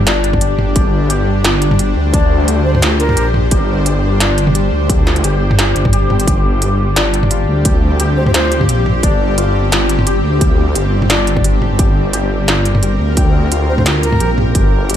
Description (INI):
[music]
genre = half-time drum and bass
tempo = 174 BPM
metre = 4/4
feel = swing 54% on 16ths, half-time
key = G minor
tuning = A4 = 438 Hz
[part]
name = bowed-like drone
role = sustained chords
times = 0.0-15.0 s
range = G3 to C5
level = -21 LUFS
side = equal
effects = built-in reverb, vintage 12-bit sampler grit, sidechain pumping
[part]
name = santur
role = arpeggios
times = 0.0-15.0 s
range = D4 to G5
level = -21 LUFS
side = left 6 dB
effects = ping-pong delay
[part]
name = dark detuned saw bass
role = bass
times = 0.0-15.0 s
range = G1 to D2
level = -15 LUFS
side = equal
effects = none
[part]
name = industrial drum kit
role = drums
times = 0.1-15.0 s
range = hi-hat, snare drum, toms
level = -16 LUFS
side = right 1 dB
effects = none
[part]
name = electronic kick drum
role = drums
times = 0.3-14.6 s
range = none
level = -15 LUFS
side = equal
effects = distortion
[part]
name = reedy concert flute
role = melody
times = 2.7-3.3, 8.2-8.6, 13.7-14.3 s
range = Bb4 to C5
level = -22 LUFS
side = right 1 dB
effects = dub echo
[sound]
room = digital ambience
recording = none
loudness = -11 LUFS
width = side -10 dB against mid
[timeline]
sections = 0.0-15.0 A section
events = none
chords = 0.0 G5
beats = 0.07 0.41 | 0.76 1.10 1.45 1.79 | 2.14 2.48 2.83 3.17 | 3.52 3.86 4.21 4.55 | 4.90 5.24 5.58 5.93 | 6.28 6.62 6.96 7.31 | 7.65 8.00 8.34 8.69 | 9.03 9.38 9.72 10.07 | 10.41 10.76 11.10 11.45 | 11.79 12.14 12.48 12.83 | 13.17 13.52 13.86 14.21 | 14.55 14.90